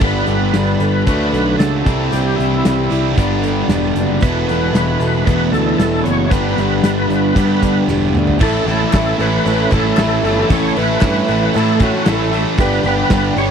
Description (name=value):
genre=classic rock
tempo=115 BPM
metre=4/4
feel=straight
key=A mixolydian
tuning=A4 = 440 Hz
part: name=overdriven tonewheel organ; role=melody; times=0.0-13.5 s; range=E4 to C#5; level=-21 LUFS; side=equal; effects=slow rotary speaker, chorus vibrato, slapback echo
part: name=picked steel-string acoustic guitar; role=accompaniment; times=0.0-13.5 s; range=E2 to A4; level=-27 LUFS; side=right 4 dB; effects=none
part: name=cranked stack guitar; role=riff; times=0.0-13.5 s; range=E2 to A4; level=-20 LUFS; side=right 15 dB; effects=overdrive
part: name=distorted electric guitar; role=riff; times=0.0-13.5 s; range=E2 to D4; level=-20 LUFS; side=left 13 dB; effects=distortion
part: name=fuzz picked electric bass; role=bass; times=0.0-13.5 s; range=E1 to A2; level=-20 LUFS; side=equal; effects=overdrive
part: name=big rock drum kit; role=drums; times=0.0-13.5 s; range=crash cymbal, hi-hat, kick drum, snare drum, toms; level=-19 LUFS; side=equal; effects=none
part: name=string machine, cellos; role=sustained chords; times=4.2-13.5 s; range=E3 to B4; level=-26 LUFS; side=equal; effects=none
part: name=octave-fuzz lead guitar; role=second line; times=8.4-13.5 s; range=A3 to A4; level=-24 LUFS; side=right 4 dB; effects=distortion, slapback echo
part: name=bright upright piano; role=accompaniment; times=8.4-13.5 s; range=C#4 to B4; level=-28 LUFS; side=left 6 dB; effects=none
part: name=group handclap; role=percussion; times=8.9-13.2 s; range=none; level=-30 LUFS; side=left 13 dB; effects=none
room=little or no reverb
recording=dry, close 1970s-style studio recording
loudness=-13 LUFS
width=side -7 dB against mid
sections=0.0-8.4 A section; 8.4-13.5 B section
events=drum fill 7.9-8.4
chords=0.0 Gadd9; 1.1 D6; 1.9 Cadd9; 3.2 Gadd9; 4.2 Esus4; 6.3 G; 8.4 A; 12.6 G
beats=| 0.02 0.54 1.07 1.60 | 2.12 2.65 3.17 3.70 | 4.22 4.75 5.27 5.80 | 6.32 6.84 7.37 7.89 | 8.41 8.94 9.46 9.98 | 10.50 11.02 11.55 12.07 | 12.59 13.11